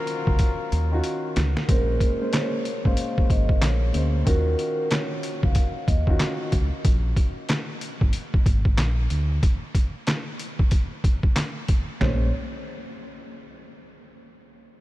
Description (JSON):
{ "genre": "hip hop, boom-bap hip-hop", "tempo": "93 BPM", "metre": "4/4", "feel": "swing 63% on 16ths", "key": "Bb minor", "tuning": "A4 = 440 Hz", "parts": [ { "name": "dark grand piano", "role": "accompaniment", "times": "0.0-6.5, 12.0-12.3 s", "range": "Bb2 to C5", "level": "-31 LUFS", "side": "equal", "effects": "high-pass filter, low-pass filter" }, { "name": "mellow trumpet section", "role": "stabs", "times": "0.0-1.3 s", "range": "Gb3 to Bb4", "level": "-34 LUFS", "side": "left 3 dB", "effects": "high-pass filter, low-pass filter, ping-pong delay" }, { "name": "trip hop sampler-style drum kit", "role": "drums", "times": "0.1-12.2 s", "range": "handclaps, hi-hat, kick drum, snare drum, toms", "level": "-23 LUFS", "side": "equal", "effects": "none" }, { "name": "deep dub fingered electric bass", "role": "bass", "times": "0.3-12.3 s", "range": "Ab1 to Eb2", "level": "-23 LUFS", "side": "equal", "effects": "none" }, { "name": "vibraphone with medium mallets", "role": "melody", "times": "1.7-6.2, 12.0-12.3 s", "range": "Bb4 to F5", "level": "-32 LUFS", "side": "equal", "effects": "high-pass filter, low-pass filter, ping-pong delay" } ], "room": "light reverb, small room ambience", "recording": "none", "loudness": "-21 LUFS", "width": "side -17 dB against mid", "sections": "0.0-1.7 A section; 1.7-12.0 B section; 12.0-14.6 C section", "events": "drum fill 0.4-1.7", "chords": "0.0 Ebm9; 1.7 Bbm9; 4.3 Ebm9; 6.8 Absus2; 9.4 N.C.; 12.0 Bbm9" }